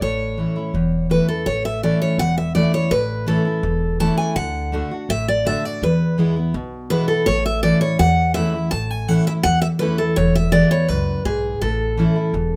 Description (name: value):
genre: bluegrass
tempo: 166 BPM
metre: 4/4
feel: straight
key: A major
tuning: A4 = 440 Hz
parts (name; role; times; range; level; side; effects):
- picked steel-string acoustic guitar; melody; 0.0-12.6 s; G#4 to A5; -24 LUFS; equal; none
- picked steel-string acoustic guitar; accompaniment; 0.0-12.6 s; E2 to F#4; -22 LUFS; equal; none
- upright bass; bass; 0.0-12.6 s; E1 to E2; -27 LUFS; equal; none
room: wet studio reverb, RT60 0.5 s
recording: none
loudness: -19 LUFS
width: mono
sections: 0.0-1.5 A section; 1.5-12.6 B section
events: none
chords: 0.0 A; 4.4 D; 5.8 E; 7.3 A; 10.2 E; 11.6 A